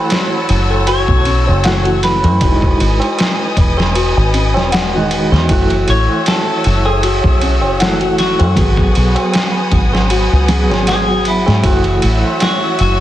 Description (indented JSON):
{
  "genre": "trip hop",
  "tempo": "78 BPM",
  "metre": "4/4",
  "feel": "swing 55% on 16ths",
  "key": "F# dorian",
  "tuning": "A4 = 439 Hz",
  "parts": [
    { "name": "clean electric guitar", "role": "melody", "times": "0.0-13.0 s", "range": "E4 to C#5", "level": "-21 LUFS", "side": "equal", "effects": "tape echo" },
    { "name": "felt-muted upright piano", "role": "accompaniment", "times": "0.0-13.0 s", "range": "D#3 to G#4", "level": "-19 LUFS", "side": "right 2 dB", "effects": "tremolo, vintage 12-bit sampler grit, tape echo" },
    { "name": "muted studio string section", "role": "sustained chords", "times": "0.0-13.0 s", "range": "B4 to E6", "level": "-22 LUFS", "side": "left 2 dB", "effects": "none" },
    { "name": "music box", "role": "arpeggios", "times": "0.0-12.4 s", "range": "C#4 to F#5", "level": "-22 LUFS", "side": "left 4 dB", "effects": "ping-pong delay" },
    { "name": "trip hop sampler-style drum kit", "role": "drums", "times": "0.1-13.0 s", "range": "kick drum, ride cymbal, snare drum", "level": "-17 LUFS", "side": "equal", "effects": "vintage 12-bit sampler grit" },
    { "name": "tabla", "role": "percussion", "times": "0.1-12.8 s", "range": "none", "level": "-24 LUFS", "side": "right 3 dB", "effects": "none" },
    { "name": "deep dub fingered electric bass", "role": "bass", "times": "0.5-13.0 s", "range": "E1 to G#2", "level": "-15 LUFS", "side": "equal", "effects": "none" }
  ],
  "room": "light reverb, studio ambience",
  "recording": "heavily compressed radio sound, multiband compression",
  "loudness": "-11 LUFS",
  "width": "side -13 dB against mid",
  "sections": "0.0-13.0 A section",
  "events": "none",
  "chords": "0.0 F#m7; 2.4 Emaj7; 5.5 F#m7; 8.6 G#m7; 11.6 F#m7",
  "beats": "0.10 0.88 1.64 | 2.41 3.18 3.95 4.72 | 5.49 6.26 7.03 7.80 | 8.57 9.34 10.11 10.88 | 11.64 12.41"
}